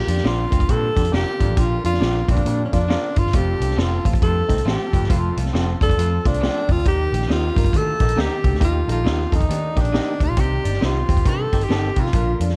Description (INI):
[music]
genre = uptempo 1960s-style soul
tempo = 136 BPM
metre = 4/4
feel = swing 62% on 8ths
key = unclear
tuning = A4 = 438 Hz
[part]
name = breathy tenor saxophone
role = melody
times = 0.0-12.4 s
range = Db4 to A4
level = -26 LUFS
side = equal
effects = tape echo
[part]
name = tonewheel organ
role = sustained chords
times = 0.0-12.6 s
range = D3 to A4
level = -38 LUFS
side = equal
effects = none
[part]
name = breathy baritone saxophone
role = riff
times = 0.0-12.5 s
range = D2 to C3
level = -35 LUFS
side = equal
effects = none
[part]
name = reed electric piano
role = accompaniment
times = 0.1-12.5 s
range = A3 to Bb4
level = -32 LUFS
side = equal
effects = overdrive, fast tremolo
[part]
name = electric guitar through a small old amp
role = riff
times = 0.1-12.5 s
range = Bb3 to G4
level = -38 LUFS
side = equal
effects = none
[part]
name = vintage muted picked electric bass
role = bass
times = 0.1-12.5 s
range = F1 to Eb3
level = -24 LUFS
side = equal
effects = none
[part]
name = vintage drum kit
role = drums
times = 0.1-12.5 s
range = hi-hat, kick drum, snare drum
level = -24 LUFS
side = equal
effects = none
[part]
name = electric guitar through a small old amp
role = stabs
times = 0.2-11.8 s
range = C4 to Eb5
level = -35 LUFS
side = equal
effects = none
[sound]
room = little or no reverb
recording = dark, warm production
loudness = -20 LUFS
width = mono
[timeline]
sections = 0.0-12.6 A section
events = none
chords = 0.0 Gm; 3.3 F; 6.9 Eb; 10.4 Cm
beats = 0.25 0.69 1.14 | 1.58 2.02 2.46 2.90 | 3.34 3.78 4.22 4.66 | 5.10 5.54 5.98 6.42 | 6.85 7.29 7.73 8.17 | 8.61 9.05 9.49 9.93 | 10.37 10.81 11.25 11.69 | 12.13